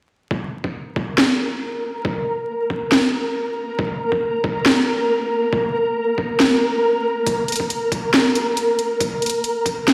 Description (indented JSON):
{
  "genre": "deep dubstep",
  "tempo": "138 BPM",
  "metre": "4/4",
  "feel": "half-time",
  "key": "unclear",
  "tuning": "A4 = 440 Hz",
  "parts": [
    { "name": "electronic kick drum", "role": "drums", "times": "0.3-9.7 s", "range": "none", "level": "-28 LUFS", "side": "equal", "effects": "overdrive, high-pass filter on kick" },
    { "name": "flickering grainy texture", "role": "texture", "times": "1.1-9.9 s", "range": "Bb4", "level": "-23 LUFS", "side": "equal", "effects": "built-in reverb" },
    { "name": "garage drum kit", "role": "drums", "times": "1.2-9.9 s", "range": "hi-hat, snare drum", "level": "-21 LUFS", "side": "equal", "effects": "overdrive" }
  ],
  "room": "wet lush hall reverb, RT60 2.4 s",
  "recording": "played on a big sound system in a bare room, stone room reverb, vinyl crackle",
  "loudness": "-20 LUFS",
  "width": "mono",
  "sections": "0.3-9.9 A section",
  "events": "none",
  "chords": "none"
}